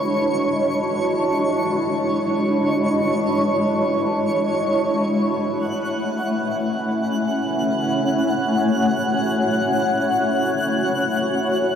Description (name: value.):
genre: ambient.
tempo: free time.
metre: none.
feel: none.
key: F# minor.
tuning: A4 = 440 Hz.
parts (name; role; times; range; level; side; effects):
granular cloud pad; sustained chords; 0.0-11.8 s; G#3 to C#5; -20 LUFS; equal; built-in reverb, shimmer reverb.
twinkling granular texture; texture; 0.0-11.8 s; C#5 to F#6; -24 LUFS; right 1 dB; built-in reverb, shimmer reverb.
room: wet concert hall reverb, RT60 1.9 s.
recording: none.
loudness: -18 LUFS.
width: side -8 dB against mid.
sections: 0.0-11.8 A section.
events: none.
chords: 0.0 E13; 4.9 F#m7.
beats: free time.